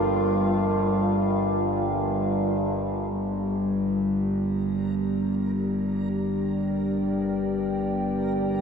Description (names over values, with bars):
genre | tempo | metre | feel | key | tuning
dark ambient drone | free time | none | none | G minor | A4 = 439 Hz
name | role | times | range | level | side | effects
dark analog pad | sustained chords | 0.0-8.6 s | G3 to G5 | -28 LUFS | right 1 dB | chorus
dark detuned synth bell | arpeggios | 0.0-3.2 s | none | barely audible | none | none
overtone-sweeping drone | drone | 0.0-8.6 s | G1 to G2 | -24 LUFS | equal | chorus, built-in reverb
backwards swelling texture | texture | 4.3-8.6 s | Bb4 | -45 LUFS | right 3 dB | built-in reverb
room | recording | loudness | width
wet cathedral reverb, RT60 6.0 s | dark, warm production | -23 LUFS | side -6 dB against mid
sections
0.0-3.1 A section; 3.1-8.6 B section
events
none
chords
0.0 Gm7; 3.1 Gm